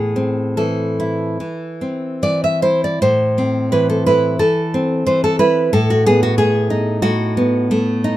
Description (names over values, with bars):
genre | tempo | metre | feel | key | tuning
romantic piece for solo classical guitar | 72-94 BPM | 4/4 | rubato | A minor | A4 = 440 Hz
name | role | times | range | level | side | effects
nylon-string guitar | solo | 0.0-8.2 s | A2 to E5 | -14 LUFS | equal | none
room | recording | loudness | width
light reverb | minimal, uncompressed stereo recording | -14 LUFS | side -14 dB against mid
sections
0.0-3.0 A section; 3.0-8.2 A section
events
none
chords
0.0 Am; 5.7 B7/A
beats
0.59 1.41 2.23 | 3.02 3.72 4.40 5.06 | 5.73 6.38 7.02 7.70